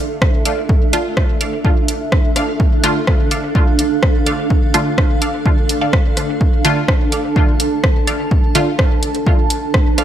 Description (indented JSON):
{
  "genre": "dub techno",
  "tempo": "126 BPM",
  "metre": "4/4",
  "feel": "straight",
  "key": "D minor",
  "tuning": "A4 = 440 Hz",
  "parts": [
    { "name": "granular cloud pad", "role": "sustained chords", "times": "0.0-10.0 s", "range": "D4 to A5", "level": "-20 LUFS", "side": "right 2 dB", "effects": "built-in reverb, sidechain pumping" },
    { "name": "deep house drum kit", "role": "drums", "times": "0.2-10.0 s", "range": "hi-hat, rim click", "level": "-20 LUFS", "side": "equal", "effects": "overdrive, studio reverb" },
    { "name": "electronic kick drum", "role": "drums", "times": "0.2-9.8 s", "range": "none", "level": "-14 LUFS", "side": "equal", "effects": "overdrive, studio reverb" },
    { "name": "filtered dub chord stab", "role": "riff", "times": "0.5-10.0 s", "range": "A4 to F5", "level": "-26 LUFS", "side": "equal", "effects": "phaser, sidechain pumping, dub echo" },
    { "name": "filtered dub chord stab", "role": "stabs", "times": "0.9-8.7 s", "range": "D3 to F4", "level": "-20 LUFS", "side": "equal", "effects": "chorus, phaser, sidechain pumping, dub echo" }
  ],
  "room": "light reverb, digital ambience",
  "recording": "none",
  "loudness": "-13 LUFS",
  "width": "side -10 dB against mid",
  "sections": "0.0-10.0 A section",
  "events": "none",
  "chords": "0.0 Dm"
}